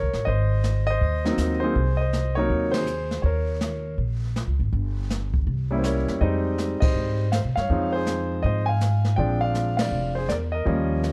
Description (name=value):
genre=jazz piano trio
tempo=162 BPM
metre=4/4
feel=swing 64% on 8ths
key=unclear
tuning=A4 = 438 Hz
part: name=warm grand piano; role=melody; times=0.0-11.1 s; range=C3 to Ab5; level=-27 LUFS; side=equal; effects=none
part: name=upright bass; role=bass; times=0.0-11.1 s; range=F1 to C3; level=-27 LUFS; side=equal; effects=none
part: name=jazz brush drum kit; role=drums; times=0.1-11.1 s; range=brushed snare drum, hi-hat, kick drum, ride cymbal, snare drum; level=-30 LUFS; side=equal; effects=none
room=light reverb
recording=dark, warm production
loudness=-24 LUFS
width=mono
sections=0.0-11.1 A section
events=band accent 2.7, 6.8, 9.7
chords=0.3 Ab7; 3.2 Eb5; 4.7 N.C.; 5.5 C7b9; 6.2 Fm7; 9.2 Bb7